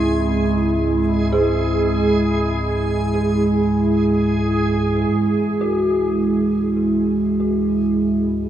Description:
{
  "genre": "dark ambient drone",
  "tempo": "free time",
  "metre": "none",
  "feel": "none",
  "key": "C# harmonic minor",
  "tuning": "A4 = 441 Hz",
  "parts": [
    { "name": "deep dark ambient pad", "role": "sustained chords", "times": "0.0-8.5 s", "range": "G#3 to G#4", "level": "-18 LUFS", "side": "right 1 dB", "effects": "chorus, built-in reverb" },
    { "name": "dark detuned synth bell", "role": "arpeggios", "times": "0.0-8.5 s", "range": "B#3 to G#4", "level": "-24 LUFS", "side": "equal", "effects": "chorus, phaser, tape echo" },
    { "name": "deep rumbling drone", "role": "drone", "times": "0.0-8.5 s", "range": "C#2 to G#2", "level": "-25 LUFS", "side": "right 1 dB", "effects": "built-in reverb" },
    { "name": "backwards swelling texture", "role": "texture", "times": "0.0-5.1 s", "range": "G#4", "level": "-27 LUFS", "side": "right 3 dB", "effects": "built-in reverb" }
  ],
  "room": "wet cathedral reverb, RT60 4.6 s",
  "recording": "in a vast, echoing space, small room ambience",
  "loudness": "-16 LUFS",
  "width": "side -10 dB against mid",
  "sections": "0.0-5.1 A section; 5.1-8.5 B section",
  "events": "filter sweep on synth drone 5.1-8.5",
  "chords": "0.0 C#m",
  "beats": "free time"
}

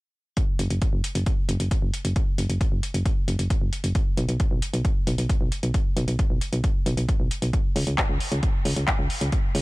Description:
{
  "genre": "uplifting trance",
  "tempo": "134 BPM",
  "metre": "4/4",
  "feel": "straight",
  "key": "unclear",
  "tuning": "A4 = 439 Hz",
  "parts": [
    { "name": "electronic kick drum", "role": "drums", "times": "0.4-9.4 s", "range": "none", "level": "-24 LUFS", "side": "equal", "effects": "none" },
    { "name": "techno drum kit", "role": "drums", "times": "0.4-9.6 s", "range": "handclaps, hi-hat", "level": "-30 LUFS", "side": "left 1 dB", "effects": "none" },
    { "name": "solid FM bass", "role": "bass", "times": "0.6-9.6 s", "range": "F#1 to C#2", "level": "-24 LUFS", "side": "equal", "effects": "sidechain pumping" }
  ],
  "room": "little or no reverb",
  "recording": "dark, warm production",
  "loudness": "-22 LUFS",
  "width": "side -21 dB against mid",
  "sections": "0.4-9.6 A section",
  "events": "none",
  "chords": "none",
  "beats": "| 0.37 0.82 1.26 1.71 | 2.16 2.61 3.06 3.50 | 3.95 4.40 4.85 5.29 | 5.74 6.19 6.64 7.08 | 7.53 7.98 8.43 8.88 | 9.32"
}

